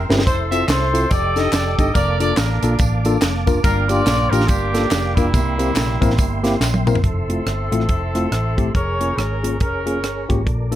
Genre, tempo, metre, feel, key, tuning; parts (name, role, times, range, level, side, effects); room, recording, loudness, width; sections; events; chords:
uptempo gospel; 142 BPM; 4/4; swing 60% on 8ths; F major; A4 = 440 Hz
warm horn section; melody; 0.0-10.4 s; G3 to E5; -22 LUFS; equal
tine electric piano; accompaniment; 0.0-10.8 s; G2 to Bb4; -23 LUFS; left 2 dB; medium stereo tremolo
mellow tonewheel organ; sustained chords; 0.0-10.8 s; Bb3 to D6; -28 LUFS; right 4 dB; chorus vibrato, stopped rotary speaker
hollow-body short-scale fingered electric bass; bass; 0.0-10.8 s; F1 to C2; -22 LUFS; equal
tight funk drum kit; drums; 0.1-10.8 s; hi-hat, kick drum, rim click, snare drum, toms; -20 LUFS; equal
tambourine and handclaps; percussion; 0.1-7.0 s; -32 LUFS; equal
small room ambience; -16 LUFS; side -12 dB against mid
0.0-7.0 A section; 7.0-10.8 B section
drum fill 0.0, 6.6-7.0
0.3 Fmaj7; 1.1 F13; 2.0 Bbmaj7/F; 3.6 Gm7; 5.3 C7; 7.0 Fmaj7; 8.8 Db6/F